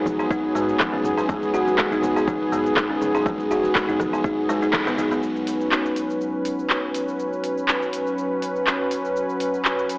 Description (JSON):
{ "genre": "afro house", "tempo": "122 BPM", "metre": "4/4", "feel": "swing 54% on 16ths", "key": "unclear", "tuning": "A4 = 441 Hz", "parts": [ { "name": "warm analog pad", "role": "sustained chords", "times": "0.0-10.0 s", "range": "F#3 to B4", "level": "-24 LUFS", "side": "equal", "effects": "chorus, vintage 12-bit sampler grit, sidechain pumping" }, { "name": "buzzing kalimba", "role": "arpeggios", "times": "0.0-5.2 s", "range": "F#3 to G#4", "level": "-23 LUFS", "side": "equal", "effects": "sidechain pumping, tape echo" }, { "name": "warm sub bass", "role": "bass", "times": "0.1-4.7 s", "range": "D#1 to G#2", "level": "-42 LUFS", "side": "equal", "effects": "tube saturation, sidechain pumping" }, { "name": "deep house drum kit", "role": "drums", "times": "0.1-10.0 s", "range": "cabasa, handclaps, hi-hat, rim click, toms", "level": "-24 LUFS", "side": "equal", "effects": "overdrive" }, { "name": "electronic kick drum", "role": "drums", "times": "0.1-4.8 s", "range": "none", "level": "-29 LUFS", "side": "equal", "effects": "overdrive" }, { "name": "congas", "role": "percussion", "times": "0.1-5.2 s", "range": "none", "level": "-34 LUFS", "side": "equal", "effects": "none" } ], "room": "moderate plate reverb, RT60 1.6 s, digital ambience", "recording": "dry, gritty hardware recording, cassette tape, AM radio sound", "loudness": "-20 LUFS", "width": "side -27 dB against mid", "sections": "0.0-5.2 A section; 5.2-10.0 B section", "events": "band accent 4.7", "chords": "0.0 G#m7; 5.2 C#7sus4" }